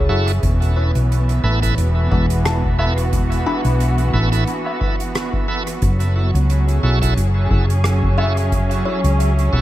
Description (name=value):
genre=ambient dub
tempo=89 BPM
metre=4/4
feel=swing 55% on 16ths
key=unclear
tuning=A4 = 440 Hz
part: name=muted studio string section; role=sustained chords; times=0.0-9.6 s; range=E3 to G#4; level=-23 LUFS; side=right 2 dB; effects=none
part: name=kalimba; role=arpeggios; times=0.0-9.6 s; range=G#3 to B5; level=-28 LUFS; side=left 5 dB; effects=analog delay
part: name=hollow-body short-scale fingered electric bass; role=bass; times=0.0-9.6 s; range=E1 to C#2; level=-16 LUFS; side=equal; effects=none
part: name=bright tonewheel organ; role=stabs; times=0.1-9.6 s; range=E4 to B4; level=-26 LUFS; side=right 3 dB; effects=overdrive, slow rotary speaker, dub echo
part: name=soft-mallet drum kit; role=drums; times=0.3-9.5 s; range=hi-hat, rim click, woodblock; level=-29 LUFS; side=right 2 dB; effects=dub echo
part: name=electronic kick drum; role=drums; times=0.4-9.6 s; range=none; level=-23 LUFS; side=equal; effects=none
room=light reverb, studio reverb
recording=echo-heavy mix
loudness=-15 LUFS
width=side -14 dB against mid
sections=0.0-9.6 A section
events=none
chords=0.4 Esus4; 5.8 F#m7